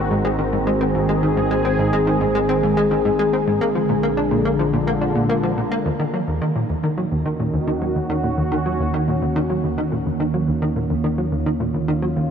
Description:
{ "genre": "ambient, sequencer-driven space music", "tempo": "107 BPM", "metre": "4/4", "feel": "straight", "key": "Eb minor from 5.9 s", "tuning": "A4 = 440 Hz", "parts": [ { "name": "sweeping resonant pad", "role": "sustained chords", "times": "0.0-12.3 s", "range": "D3 to Db5", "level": "-20 LUFS", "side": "equal", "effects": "chorus" }, { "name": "plucky analog bass", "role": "riff", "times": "0.0-12.3 s", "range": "Eb2 to D4", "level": "-22 LUFS", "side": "equal", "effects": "lush chorus, analog delay" }, { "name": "analog drone", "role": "bass", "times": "0.0-12.3 s", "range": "Ab1 to Eb2", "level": "-29 LUFS", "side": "equal", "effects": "chorus" }, { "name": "wind-like tuned noise texture", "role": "texture", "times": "0.0-5.9 s", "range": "Bb3 to Bb4", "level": "-33 LUFS", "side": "left 2 dB", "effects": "none" } ], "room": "wet huge ambient reverb, RT60 8.2 s", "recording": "none", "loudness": "-18 LUFS", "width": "side -7 dB against mid", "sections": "0.0-5.9 A section; 5.9-12.3 B section", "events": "none", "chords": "0.0 Ab7; 3.6 Bb7; 5.9 Ebm7" }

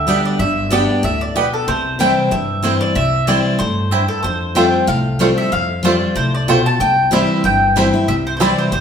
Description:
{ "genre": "bluegrass", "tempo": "187 BPM", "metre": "4/4", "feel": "swing 55% on 8ths", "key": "C major", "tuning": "A4 = 440 Hz", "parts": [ { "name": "mandolin", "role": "melody", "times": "0.0-8.8 s", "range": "A4 to A5", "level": "-19 LUFS", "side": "equal", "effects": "none" }, { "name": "picked steel-string acoustic guitar", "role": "accompaniment", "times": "0.0-8.8 s", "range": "F2 to G4", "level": "-18 LUFS", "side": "left 1 dB", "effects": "none" }, { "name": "upright bass", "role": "bass", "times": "0.0-8.8 s", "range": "G1 to G2", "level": "-23 LUFS", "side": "equal", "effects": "none" }, { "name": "mandolin", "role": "stabs", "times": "0.1-8.5 s", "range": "A3 to G5", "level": "-21 LUFS", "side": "right 3 dB", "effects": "none" }, { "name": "bluegrass banjo", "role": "arpeggios", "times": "4.6-8.5 s", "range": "G3 to F4", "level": "-21 LUFS", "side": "right 1 dB", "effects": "none" } ], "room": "wet stone room reverb, RT60 1.2 s", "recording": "band playing live in one room", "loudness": "-13 LUFS", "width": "side -7 dB against mid", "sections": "0.0-8.8 A section", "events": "none", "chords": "0.0 G; 1.7 C; 4.2 Fadd9; 6.8 C" }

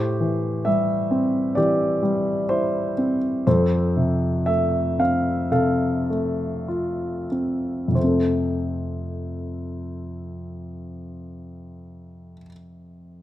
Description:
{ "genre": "classical, lyrical solo piano", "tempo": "44-67 BPM", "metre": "4/4", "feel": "rubato", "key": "F major", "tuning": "A4 = 441 Hz", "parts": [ { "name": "warm concert grand piano", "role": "solo", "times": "0.0-13.2 s", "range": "F2 to F5", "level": "-21 LUFS", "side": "equal", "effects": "none" } ], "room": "light reverb", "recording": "close, detailed microphones", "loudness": "-20 LUFS", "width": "side -13 dB against mid", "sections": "0.0-8.0 A section; 8.0-13.2 B section", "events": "slowing down 0.0-8.0", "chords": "0.0 Am7; 3.5 F" }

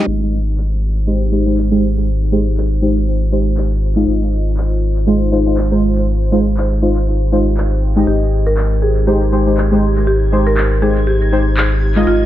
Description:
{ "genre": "deep house", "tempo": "120 BPM", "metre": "4/4", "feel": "swing 58% on 16ths", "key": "Ab major", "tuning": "A4 = 440 Hz", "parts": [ { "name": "deep dark ambient pad", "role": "sustained chords", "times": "0.0-12.3 s", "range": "Ab3 to C5", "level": "-25 LUFS", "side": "equal", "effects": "chorus, built-in reverb" }, { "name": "deep mellow chord stab", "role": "stabs", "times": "0.0-12.3 s", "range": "Ab3 to Eb5", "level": "-17 LUFS", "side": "equal", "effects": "chorus, dub echo" }, { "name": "round analog bass", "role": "bass", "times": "0.1-12.3 s", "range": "Ab1", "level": "-16 LUFS", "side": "equal", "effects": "none" }, { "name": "punchy analog drum machine", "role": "drums", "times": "0.1-11.7 s", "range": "crash cymbal, handclaps", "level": "-24 LUFS", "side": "left 1 dB", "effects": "tape echo" }, { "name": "buzzing marimba with hard mallets", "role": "melody", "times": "8.1-12.3 s", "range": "F4 to Bb4", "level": "-20 LUFS", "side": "equal", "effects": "tape echo" }, { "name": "string machine, violins", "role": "texture", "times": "8.1-12.3 s", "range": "Ab6", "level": "-32 LUFS", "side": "equal", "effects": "ensemble chorus" } ], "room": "light reverb, digital ambience", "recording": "echo-heavy mix, low-pass filter", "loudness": "-13 LUFS", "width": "side -13 dB against mid", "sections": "0.1-12.3 A section", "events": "filter sweep 0.1-12.3", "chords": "0.1 Abmaj7" }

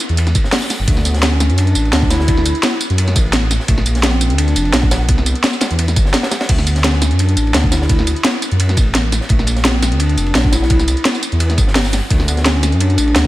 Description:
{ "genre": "liquid drum and bass", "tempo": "171 BPM", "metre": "4/4", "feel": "swing 53% on 16ths", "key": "D major", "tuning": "A4 = 439 Hz", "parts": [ { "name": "crunchy breakbeat drum kit", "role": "drums", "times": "0.0-13.2 s", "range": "hi-hat, ride cymbal, snare drum", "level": "-23 LUFS", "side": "equal", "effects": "high-pass filter on cymbals, studio reverb, high-pass filter on hats, high-pass filter on snare, high-pass filter on room" }, { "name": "drum and bass drum kit", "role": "drums", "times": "0.0-13.2 s", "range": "crash cymbal, hi-hat, snare drum, tambourine", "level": "-18 LUFS", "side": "equal", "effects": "studio reverb" }, { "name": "dark detuned saw bass", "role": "bass", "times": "0.1-13.3 s", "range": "F1 to F#2", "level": "-15 LUFS", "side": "equal", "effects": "none" }, { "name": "electronic kick drum", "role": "drums", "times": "0.4-13.3 s", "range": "none", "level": "-16 LUFS", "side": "equal", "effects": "overdrive, studio reverb" }, { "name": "hollow clarinet-like synth lead", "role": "melody", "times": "0.9-13.3 s", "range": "A3 to E4", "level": "-22 LUFS", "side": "left 1 dB", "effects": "chorus, diffuse ambient delay" } ], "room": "light reverb, studio ambience", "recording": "none", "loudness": "-12 LUFS", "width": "side -16 dB against mid", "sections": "0.0-13.3 A section", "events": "none", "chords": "0.0 C (rootless); 0.9 Dadd9; 3.7 Bbadd9; 5.1 Cmaj7; 6.5 Dadd9; 9.3 Bbadd9; 10.7 C; 12.1 Dmaj7" }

